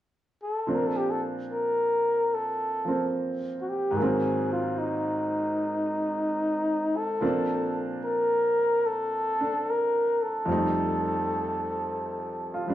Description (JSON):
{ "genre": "jazz ballad", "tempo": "73 BPM", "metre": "4/4", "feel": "swing 67% on 8ths", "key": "Bb major", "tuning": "A4 = 441 Hz", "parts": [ { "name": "mellow flugelhorn", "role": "melody", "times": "0.4-12.7 s", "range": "Eb4 to Bb4", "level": "-26 LUFS", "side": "left 1 dB", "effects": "plate reverb" }, { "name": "clear upright piano", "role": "accompaniment", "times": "0.7-12.7 s", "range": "F2 to F4", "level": "-30 LUFS", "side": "right 1 dB", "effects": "none" } ], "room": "wet studio reverb, RT60 0.5 s", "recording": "heard from further back in the room", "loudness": "-25 LUFS", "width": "side -13 dB against mid", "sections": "0.7-12.7 A section", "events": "none", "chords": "0.0 N.C.; 0.7 Bbmaj7; 4.0 Ab9; 7.2 Bbmaj7; 10.5 F9" }